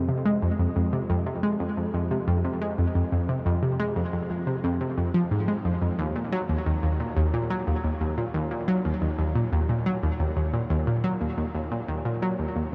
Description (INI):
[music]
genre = ambient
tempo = 89 BPM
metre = 4/4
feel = straight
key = Eb dorian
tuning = A4 = 440 Hz
[part]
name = analog pluck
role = solo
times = 0.0-12.7 s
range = Eb2 to Ab3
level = -26 LUFS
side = equal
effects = chorus, vintage 12-bit sampler grit, delay
[sound]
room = wet huge ambient reverb, RT60 7.7 s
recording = dark, warm production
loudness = -26 LUFS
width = mono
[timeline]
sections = 0.0-12.7 A section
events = none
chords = none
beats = | 0.59 1.26 1.94 2.61 | 3.29 3.96 4.63 5.31 | 5.98 6.66 7.33 8.01 | 8.68 9.35 10.03 10.70 | 11.38 12.05 12.72